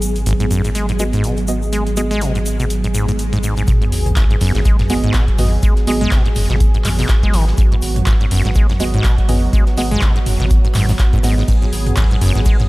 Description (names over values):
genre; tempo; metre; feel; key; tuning
acid house; 123 BPM; 4/4; swing 57% on 16ths; G# minor pentatonic; A4 = 441 Hz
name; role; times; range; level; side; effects
warm analog pad; sustained chords; 0.0-12.7 s; F#3 to G#4; -24 LUFS; right 2 dB; chorus, vintage 12-bit sampler grit, sidechain pumping
saturated sub bass; bass; 0.0-12.5 s; F#1 to G#1; -19 LUFS; equal; sidechain pumping
electro analog drum machine; drums; 0.0-12.7 s; handclaps, hi-hat, ride cymbal, toms; -24 LUFS; equal; none
egg shaker; percussion; 0.0-3.7 s; none; -31 LUFS; left 2 dB; none
acid bass, saw; riff; 0.3-12.6 s; G#1 to G#3; -20 LUFS; equal; tube saturation, sidechain pumping, tape echo
deep mellow chord stab; stabs; 1.0-11.5 s; B3 to D#5; -23 LUFS; right 2 dB; chorus, tape echo
swell and sub drop; sound effects; 2.9-5.6 s; none; -26 LUFS; equal; none
electronic kick drum; drums; 3.7-12.6 s; none; -15 LUFS; equal; none
tight funk drum kit; drums; 3.7-12.7 s; hi-hat, shaker, snare drum; -34 LUFS; equal; none
room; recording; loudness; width
small room ambience; none; -13 LUFS; side -20 dB against mid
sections
0.0-3.7 A section; 3.7-12.7 B section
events
swell 2.9-3.7; drop 3.7-12.7; impact 3.7-5.6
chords
0.0 G#m7